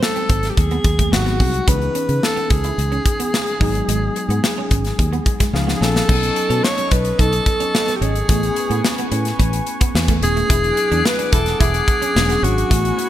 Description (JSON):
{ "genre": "polished 1980s jazz-funk pop", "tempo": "109 BPM", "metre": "4/4", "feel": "straight", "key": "unclear", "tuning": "A4 = 440 Hz", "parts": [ { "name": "breathy alto saxophone", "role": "melody", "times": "0.0-13.1 s", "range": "F#4 to C#5", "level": "-21 LUFS", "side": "equal", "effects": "none" }, { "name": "mellow tine electric piano", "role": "accompaniment", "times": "0.0-13.1 s", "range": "E3 to G#5", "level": "-26 LUFS", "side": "left 4 dB", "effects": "lush chorus" }, { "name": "semi-hollow electric guitar", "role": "riff", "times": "0.0-13.0 s", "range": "G#3 to E4", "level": "-29 LUFS", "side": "right 7 dB", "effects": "ensemble chorus" }, { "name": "modern studio drum kit", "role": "drums", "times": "0.0-13.1 s", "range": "crash cymbal, hi-hat, kick drum, snare drum", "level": "-19 LUFS", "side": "equal", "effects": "gated reverb" }, { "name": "fingered electric bass", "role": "bass", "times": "0.3-12.9 s", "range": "D#1 to C#3", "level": "-20 LUFS", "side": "equal", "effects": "none" }, { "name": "warm analog pad", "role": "sustained chords", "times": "6.1-13.1 s", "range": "G#4 to D6", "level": "-28 LUFS", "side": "equal", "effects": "chorus" } ], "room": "light reverb, small room reverb", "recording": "bright 1980s-style digital production", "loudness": "-15 LUFS", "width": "side -12 dB against mid", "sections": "0.0-6.1 A section; 6.1-13.1 B section", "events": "tine electric piano fill 5.3-6.1; drum fill 5.5-6.1", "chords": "0.0 G#7b9; 1.7 C#m9; 3.6 G#m7; 5.5 C#9; 6.1 B9; 8.3 Amaj9; 10.5 E13", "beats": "0.03 0.58 1.13 | 1.68 2.23 2.78 3.33 | 3.89 4.44 4.99 5.54 | 6.09 6.64 7.19 7.75 | 8.30 8.85 9.40 9.95 | 10.50 11.05 11.60 12.15 | 12.71" }